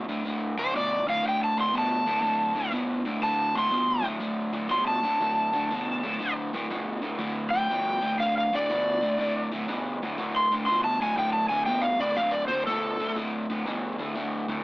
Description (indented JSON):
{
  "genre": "rock",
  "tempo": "121 BPM",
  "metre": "4/4",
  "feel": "swing 66% on 8ths",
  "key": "D minor",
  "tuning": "A4 = 440 Hz",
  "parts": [
    { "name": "crunchy overdriven guitar", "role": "riff", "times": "0.0-14.6 s", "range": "D2 to B2", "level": "-28 LUFS", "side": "equal", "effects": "none" },
    { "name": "overdriven slide guitar", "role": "melody", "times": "0.6-13.1 s", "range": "A4 to C6", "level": "-25 LUFS", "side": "equal", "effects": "none" }
  ],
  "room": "moderate studio reverb, RT60 0.5 s",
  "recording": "band playing live in one room, small speaker sound",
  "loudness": "-24 LUFS",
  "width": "side -23 dB against mid",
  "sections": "0.0-14.6 A section",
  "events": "electric slide guitar solo 0.0-14.6",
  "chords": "0.0 D5"
}